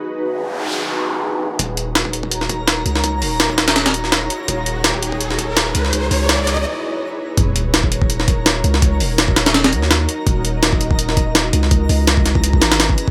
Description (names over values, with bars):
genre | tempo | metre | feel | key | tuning
drum and bass, jungle | 166 BPM | 4/4 | swing 55% on 16ths | Eb phrygian | A4 = 440 Hz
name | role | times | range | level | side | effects
ethereal airy pad | sustained chords | 0.0-13.1 s | Db4 to Eb5 | -27 LUFS | equal | ensemble chorus, built-in reverb
noise sweep, riser and sub drop | sound effects | 0.3-8.8 s | none | -27 LUFS | equal | none
long sustained 808-style bass | bass | 1.6-13.0 s | Eb1 to Eb2 | -22 LUFS | equal | none
jungle sampler-style drum kit | drums | 1.6-13.1 s | hi-hat, kick drum, snare drum | -18 LUFS | equal | overdrive, high-pass filter on hats, high-pass filter on kick, high-pass filter on snare
twinkling granular texture | texture | 2.1-13.1 s | Bb5 | -31 LUFS | equal | built-in reverb
room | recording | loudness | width
light reverb | none | -17 LUFS | mono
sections
0.0-1.6 A section; 1.6-7.4 B section; 7.4-13.1 C section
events
noise sweep 0.3-1.6; build-up 1.6-7.4; riser 1.6-6.7; break 6.7-7.4; drop 7.4-13.1; impact 7.4-8.8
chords
0.0 Abm7; 1.6 Ebm7; 5.9 Dbm7; 7.4 Ebm7; 11.7 Dbm7